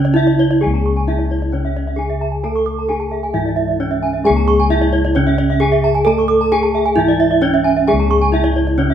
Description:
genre	Balinese gamelan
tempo	132 BPM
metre	4/4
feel	straight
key	C# pelog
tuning	A4 = 441 Hz
part	gamelan-type bronze metallophone	melody	0.0-8.9 s	C#4 to A4	-17 LUFS	right 1 dB	none
part	gamelan-type bronze metallophone	accompaniment	0.0-8.9 s	C#3 to A3	-23 LUFS	left 1 dB	none
part	gamelan-type bronze metallophone	arpeggios	0.0-8.9 s	C#5 to C#6	-23 LUFS	equal	none
part	gamelan-type bronze metallophone	arpeggios	0.0-8.8 s	D5+35c to D6+35c	-22 LUFS	right 7 dB	none
part	gamelan-type bossed gongs	bass	0.0-8.9 s	C#2 to A4	-19 LUFS	left 2 dB	none
room	moderate stone room reverb, RT60 1.2 s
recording	band playing live in one room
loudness	-13 LUFS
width	side -9 dB against mid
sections	0.6-8.9 A section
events	none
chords	none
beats	0.16 | 0.61 1.07 1.52 1.98 | 2.43 2.88 3.34 3.79 | 4.25 4.70 5.15 5.61 | 6.06 6.52 6.97 7.42 | 7.88 8.33 8.79

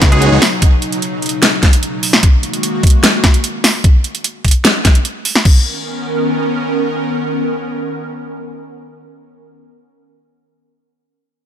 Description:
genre	future bass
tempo	149 BPM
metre	4/4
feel	half-time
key	B major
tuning	A4 = 439 Hz
part	airy breathy pad	sustained chords	0.0-9.4 s	B2 to A#4	-19 LUFS	equal	chorus, sidechain pumping
part	dubstep drum kit	drums	0.0-5.5 s	crash cymbal, hi-hat, snare drum	-14 LUFS	equal	none
part	electronic kick drum	drums	0.0-5.5 s	none	-10 LUFS	equal	none
room	light reverb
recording	none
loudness	-11 LUFS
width	side -10 dB against mid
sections	0.0-5.5 A section; 5.5-8.7 B section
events	drop 0.0-5.5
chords	0.0 C#9sus4; 2.2 F#69; 5.5 Bmaj9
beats	0.22 | 0.62 1.02 1.43 1.83 | 2.23 2.63 3.04 3.44 | 3.84 4.24 4.65 5.05 | 5.45 5.86 6.26 6.66 | 7.06 7.47 7.87 8.27

